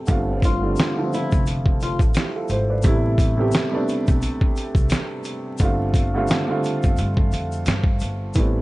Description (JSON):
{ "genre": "lo-fi hip hop", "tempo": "87 BPM", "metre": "4/4", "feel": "swing 55% on 16ths", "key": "unclear", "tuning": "A4 = 439 Hz", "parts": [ { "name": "dark upright piano", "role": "accompaniment", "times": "0.0-8.6 s", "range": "C3 to D5", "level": "-24 LUFS", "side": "right 1 dB", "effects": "cassette tape, low-pass filter" }, { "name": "upright bass", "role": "bass", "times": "0.1-8.6 s", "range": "F1 to G2", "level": "-24 LUFS", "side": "equal", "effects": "none" }, { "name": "dusty soul sampler-style drum kit", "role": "drums", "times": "0.1-8.5 s", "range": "hi-hat, kick drum, snare drum", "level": "-20 LUFS", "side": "equal", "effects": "none" }, { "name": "tube shaker", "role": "percussion", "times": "0.1-8.5 s", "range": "none", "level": "-44 LUFS", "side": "left 6 dB", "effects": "none" }, { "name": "flamenco guitar", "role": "melody", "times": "0.5-2.0 s", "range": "E4 to F4", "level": "-30 LUFS", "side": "left 3 dB", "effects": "low-pass filter" } ], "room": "studio ambience", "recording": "vinyl crackle, nothing above 11.0 kHz", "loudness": "-18 LUFS", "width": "side -19 dB against mid", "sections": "0.0-8.4 A section", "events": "none", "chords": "0.1 G9sus4; 2.8 Am9; 5.6 G9sus4" }